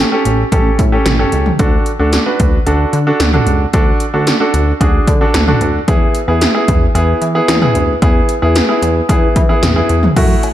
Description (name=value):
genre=synth-pop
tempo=112 BPM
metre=4/4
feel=straight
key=unclear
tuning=A4 = 440 Hz
part: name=clear baby grand piano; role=accompaniment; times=0.0-10.5 s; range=A3 to B4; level=-15 LUFS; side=right 1 dB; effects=none
part: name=chorused synth bass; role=bass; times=0.0-10.4 s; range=A1 to E3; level=-15 LUFS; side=equal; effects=none
part: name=80s electronic pad drums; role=drums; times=0.3-10.5 s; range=cowbell, crash cymbal, hi-hat, kick drum, snare drum, toms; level=-14 LUFS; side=equal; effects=gated reverb on snare and toms, overdrive
room=light reverb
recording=dark, warm production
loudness=-10 LUFS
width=side -12 dB against mid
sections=0.0-10.2 A section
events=none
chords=0.0 A7; 1.6 D; 5.9 E